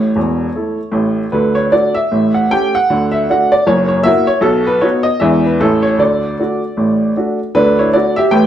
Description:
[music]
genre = jazz, stride piano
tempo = 154 BPM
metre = 4/4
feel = swing 60% on 8ths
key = D major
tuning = A4 = 438 Hz
[part]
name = bright upright piano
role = solo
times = 0.0-8.5 s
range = E1 to G5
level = -11 LUFS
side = equal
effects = none
[sound]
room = moderate studio reverb, RT60 0.9 s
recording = heard from further back in the room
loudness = -11 LUFS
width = side -10 dB against mid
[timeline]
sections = 0.0-7.6 A section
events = none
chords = 0.0 A; 1.3 D; 2.1 A7; 2.9 D; 3.7 F#7; 4.4 B; 5.2 E7; 5.6 A; 6.0 D

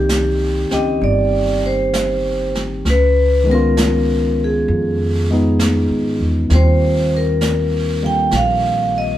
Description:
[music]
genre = jazz ballad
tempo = 66 BPM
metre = 4/4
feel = swing 67% on 8ths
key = unclear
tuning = A4 = 442 Hz
[part]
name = vibraphone with medium hard mallets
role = melody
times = 0.0-9.2 s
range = G4 to G5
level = -19 LUFS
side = equal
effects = none
[part]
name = barky tine electric piano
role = accompaniment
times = 0.0-9.2 s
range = D3 to G4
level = -19 LUFS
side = left 1 dB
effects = overdrive
[part]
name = upright bass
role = bass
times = 0.0-9.2 s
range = G1 to Ab2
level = -18 LUFS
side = equal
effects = none
[part]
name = jazz brush drum kit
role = drums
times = 0.1-9.2 s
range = brushed snare drum, hi-hat, snare drum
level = -25 LUFS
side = right 1 dB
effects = none
[sound]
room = moderate studio reverb, RT60 0.5 s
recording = band playing live in one room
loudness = -14 LUFS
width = side -12 dB against mid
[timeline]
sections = 0.0-9.2 A section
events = none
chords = 0.0 Cm7; 2.8 Db9; 6.5 Eb6

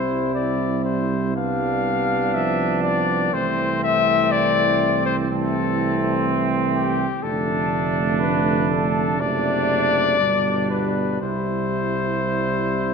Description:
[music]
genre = classical, brass quintet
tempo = 61 BPM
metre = 4/4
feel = straight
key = C major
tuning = A4 = 440 Hz
[part]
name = warm cornet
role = melody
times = 0.0-12.9 s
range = G4 to F5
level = -23 LUFS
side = left 7 dB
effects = none
[part]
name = mellow trumpet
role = second line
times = 0.0-12.9 s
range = C4 to E4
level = -26 LUFS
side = right 6 dB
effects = none
[part]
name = dark French horn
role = accompaniment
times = 0.0-12.9 s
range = G3 to C4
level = -27 LUFS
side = left 3 dB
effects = none
[part]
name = mellow trombone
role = accompaniment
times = 0.0-12.9 s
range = B2 to G3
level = -28 LUFS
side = right 4 dB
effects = none
[part]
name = mellow tuba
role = bass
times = 0.0-12.9 s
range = F1 to C2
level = -25 LUFS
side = right 4 dB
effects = none
[sound]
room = wet scoring stage reverb, RT60 1.6 s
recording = none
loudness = -18 LUFS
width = side -5 dB against mid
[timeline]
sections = 0.0-12.9 A section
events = none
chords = 0.0 C; 1.4 G7/C; 3.3 Am/C; 7.2 Dm/F; 9.2 D7/F#; 10.2 G; 11.2 C

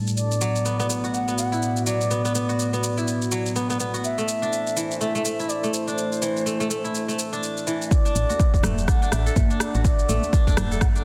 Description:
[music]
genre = afro house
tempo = 124 BPM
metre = 4/4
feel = swing 59% on 16ths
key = unclear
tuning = A4 = 440 Hz
[part]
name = warm analog pad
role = sustained chords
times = 0.0-11.0 s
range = A2 to A5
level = -30 LUFS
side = equal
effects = chorus, sidechain pumping
[part]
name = afro-pop drum kit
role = drums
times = 0.1-11.0 s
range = rim click, shaker, toms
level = -32 LUFS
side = equal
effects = none
[part]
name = mellow bansuri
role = melody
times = 0.2-10.9 s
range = C5 to F#5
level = -31 LUFS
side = equal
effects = tape echo
[part]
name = kora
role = arpeggios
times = 0.4-11.0 s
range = E3 to A4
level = -31 LUFS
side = equal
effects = sidechain pumping, tape echo
[part]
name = electronic kick drum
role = drums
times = 7.9-10.9 s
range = none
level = -22 LUFS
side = equal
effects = overdrive
[part]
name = woody FM bass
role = bass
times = 8.2-10.9 s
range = E1 to A1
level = -27 LUFS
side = equal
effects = sidechain pumping
[part]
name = congas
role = percussion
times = 8.3-10.7 s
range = none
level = -33 LUFS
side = equal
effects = none
[sound]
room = light reverb, small room ambience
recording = dense, heavily limited modern master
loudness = -23 LUFS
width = mono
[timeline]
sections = 0.0-7.9 A section; 7.9-11.0 B section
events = build-up 7.9-11.0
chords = 0.2 Bm/A; 4.0 Am; 7.9 D

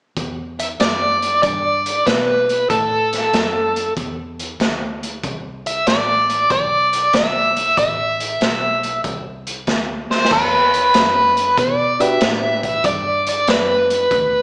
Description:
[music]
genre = electric blues shuffle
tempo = 95 BPM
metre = 4/4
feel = swing 67% on 8ths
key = E minor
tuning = A4 = 440 Hz
[part]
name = vintage muted fingered electric bass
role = bass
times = 0.2-14.4 s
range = A1 to B2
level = -30 LUFS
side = equal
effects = none
[part]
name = crunchy breakbeat drum kit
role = drums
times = 0.2-14.3 s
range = crash cymbal, hi-hat, kick drum, snare drum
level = -21 LUFS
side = equal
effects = none
[part]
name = biting overdriven guitar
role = melody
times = 0.6-14.4 s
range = A4 to E5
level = -15 LUFS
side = equal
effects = tremolo
[part]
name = warm upright piano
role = accompaniment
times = 12.0-12.8 s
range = D4 to B4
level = -20 LUFS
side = equal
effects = none
[sound]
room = moderate large studio reverb, RT60 1.5 s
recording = band playing live in one room, small speaker sound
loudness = -14 LUFS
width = side -28 dB against mid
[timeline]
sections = 0.2-10.3 A section; 10.3-14.4 B section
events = drum fill 10.0-10.3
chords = 0.2 Em7; 2.7 Am; 10.3 Em9

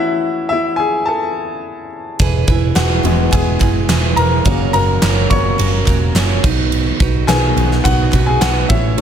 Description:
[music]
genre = piano-driven pop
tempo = 106 BPM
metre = 4/4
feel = straight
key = unclear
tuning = A4 = 443 Hz
[part]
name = clear baby grand piano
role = accompaniment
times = 0.0-9.0 s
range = C#3 to C#6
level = -18 LUFS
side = left 3 dB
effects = slapback echo
[part]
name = picked steel-string acoustic guitar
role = riff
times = 2.2-9.0 s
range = F#2 to C#5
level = -20 LUFS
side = right 9 dB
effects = slapback echo
[part]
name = vintage muted picked electric bass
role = bass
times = 2.2-9.0 s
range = E1 to B1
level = -17 LUFS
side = equal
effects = none
[part]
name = huge arena drum kit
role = drums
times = 2.2-9.0 s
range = crash cymbal, handclaps, kick drum, ride cymbal, snare drum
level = -16 LUFS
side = equal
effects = none
[part]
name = group handclap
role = percussion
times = 2.8-8.5 s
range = none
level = -33 LUFS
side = left 4 dB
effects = none
[sound]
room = light reverb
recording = none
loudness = -12 LUFS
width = side -8 dB against mid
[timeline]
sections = 0.0-9.0 A section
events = grand piano solo 0.0-9.0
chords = 0.0 A; 2.2 E; 4.5 F#; 6.4 B

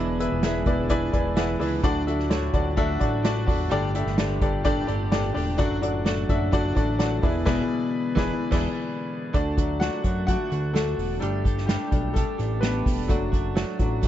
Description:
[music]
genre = piano-driven pop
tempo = 128 BPM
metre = 4/4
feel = straight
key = unclear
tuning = A4 = 440 Hz
[part]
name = clear upright piano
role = accompaniment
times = 0.0-14.1 s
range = G2 to G#5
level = -26 LUFS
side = left 3 dB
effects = none
[part]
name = mellow tonewheel organ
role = sustained chords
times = 0.0-14.1 s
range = A2 to A5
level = -34 LUFS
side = equal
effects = none
[part]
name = direct-recorded clean electric guitar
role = riff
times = 0.0-14.1 s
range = E2 to G4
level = -32 LUFS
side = right 6 dB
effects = analog chorus
[part]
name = fat analog bass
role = bass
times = 0.0-14.1 s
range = E1 to F#2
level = -28 LUFS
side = equal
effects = none
[part]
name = unplugged drum kit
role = drums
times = 0.2-14.1 s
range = crash cymbal, hi-hat, kick drum, snare drum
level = -26 LUFS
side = right 1 dB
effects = none
[sound]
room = light reverb, small room ambience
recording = dark, warm production, nothing above 7.6 kHz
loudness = -22 LUFS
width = side -12 dB against mid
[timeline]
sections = 0.0-9.3 A section; 9.3-14.1 B section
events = upright piano fill 0.9-1.8; band accent 7.5-9.3; upright piano solo 9.3-14.1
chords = 0.0 E7; 1.8 D; 3.7 Gsus2; 5.6 D/F#; 7.2 E7; 9.3 D; 11.2 Gsus2; 13.1 D/F#

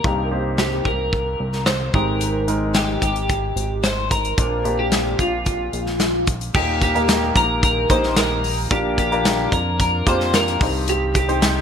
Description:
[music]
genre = piano-driven pop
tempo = 111 BPM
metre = 4/4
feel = straight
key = Eb major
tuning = A4 = 442 Hz
[part]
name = twelve-string electric guitar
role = melody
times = 0.0-11.6 s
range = F4 to C5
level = -22 LUFS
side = left 1 dB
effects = analog chorus
[part]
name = clear baby grand piano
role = accompaniment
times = 0.0-11.6 s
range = G2 to C5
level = -24 LUFS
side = equal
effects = wide subtle chorus
[part]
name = chorused synth bass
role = bass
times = 0.0-11.6 s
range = Ab1 to F2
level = -25 LUFS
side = equal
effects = none
[part]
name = modern studio drum kit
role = drums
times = 0.0-11.5 s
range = crash cymbal, hi-hat, kick drum, snare drum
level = -21 LUFS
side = equal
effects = gated reverb
[part]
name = tonewheel organ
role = sustained chords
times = 6.5-11.6 s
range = Bb2 to G4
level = -32 LUFS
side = left 1 dB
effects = none
[sound]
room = light reverb, studio reverb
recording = bright 1980s-style digital production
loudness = -17 LUFS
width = side -7 dB against mid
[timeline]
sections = 0.0-6.5 A section; 6.5-11.6 B section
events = none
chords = 0.0 Cm7; 1.9 Abmaj7; 4.4 Bbadd9; 6.5 Eb; 8.7 Bb; 10.6 Cm

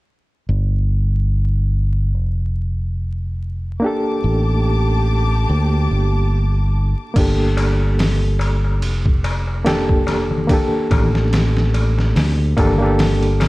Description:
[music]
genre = trip hop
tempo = 72 BPM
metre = 4/4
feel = swing 56% on 16ths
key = G minor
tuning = A4 = 439 Hz
[part]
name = fingered electric bass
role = bass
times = 0.5-13.5 s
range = F1 to D2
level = -17 LUFS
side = equal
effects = tube saturation
[part]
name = reed electric piano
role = accompaniment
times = 3.8-13.5 s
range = Bb3 to A4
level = -21 LUFS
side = equal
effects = fast tremolo, tape echo
[part]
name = rich studio string section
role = sustained chords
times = 3.8-7.1 s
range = Bb3 to D6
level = -25 LUFS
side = equal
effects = none
[part]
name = trip hop sampler-style drum kit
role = drums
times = 7.2-13.5 s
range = crash cymbal, hi-hat, kick drum, ride cymbal, snare drum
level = -21 LUFS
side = equal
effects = overdrive, small room ambience
[part]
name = darbuka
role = percussion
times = 7.2-13.5 s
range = none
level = -28 LUFS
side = left 3 dB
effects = none
[sound]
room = digital ambience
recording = dark, warm production, vinyl crackle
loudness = -15 LUFS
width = side -20 dB against mid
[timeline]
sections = 0.5-7.2 A section; 7.2-13.5 B section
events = none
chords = 0.5 Gmadd9

